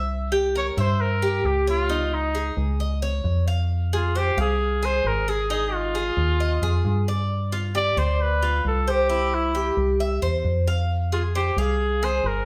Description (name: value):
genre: latin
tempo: 133 BPM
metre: 4/4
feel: straight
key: F minor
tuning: A4 = 441 Hz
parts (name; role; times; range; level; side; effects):
- Cuban tres; arpeggios; 0.0-12.5 s; Eb4 to F5; -29 LUFS; equal; none
- metallic FM bass; bass; 0.0-12.5 s; G1 to G2; -26 LUFS; equal; none
- clear trumpet; melody; 0.6-12.5 s; Eb4 to D5; -27 LUFS; equal; none
room: wet large studio reverb, RT60 0.8 s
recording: heard from further back in the room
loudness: -23 LUFS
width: mono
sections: 0.0-12.5 A section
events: none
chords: 0.1 C7; 1.9 Dbadd9; 3.7 Fm; 5.5 Ab5; 7.3 G7; 9.1 C; 10.9 Fm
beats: | 0.10 0.55 1.00 1.45 | 1.90 2.35 2.80 3.25 | 3.70 4.15 4.60 5.05 | 5.50 5.95 6.40 6.85 | 7.30 7.75 8.20 8.65 | 9.10 9.55 10.00 10.45 | 10.90 11.35 11.80 12.24